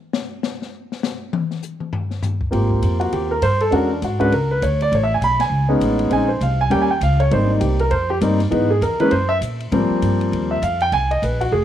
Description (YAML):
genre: jazz piano trio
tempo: 200 BPM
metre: 4/4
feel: swing 61% on 8ths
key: Ab major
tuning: A4 = 438 Hz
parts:
  - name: open jazz drum kit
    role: drums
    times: 0.1-11.5 s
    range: hi-hat, kick drum, ride cymbal, snare drum, toms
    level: -29 LUFS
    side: left 4 dB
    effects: none
  - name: warm concert grand piano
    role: melody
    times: 2.5-11.6 s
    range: Fb3 to B5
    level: -18 LUFS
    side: equal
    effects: none
  - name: upright bass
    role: bass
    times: 2.5-11.6 s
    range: F1 to Bb2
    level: -20 LUFS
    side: equal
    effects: none
room: light reverb, small room ambience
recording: 1960s-style stereo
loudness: -16 LUFS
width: side -10 dB against mid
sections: 0.0-2.5 A section; 2.5-11.6 B section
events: drum solo 0.0-2.5; band accent 5.4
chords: 0.0 N.C.; 2.5 Abmaj13; 3.7 E13; 4.9 Amaj9#11; 6.1 Bbm11; 6.7 Eb7; 7.3 Abmaj9; 8.5 Dbm7 (rootless); 9.1 Gb; 9.7 Abmaj13; 10.9 Abadd9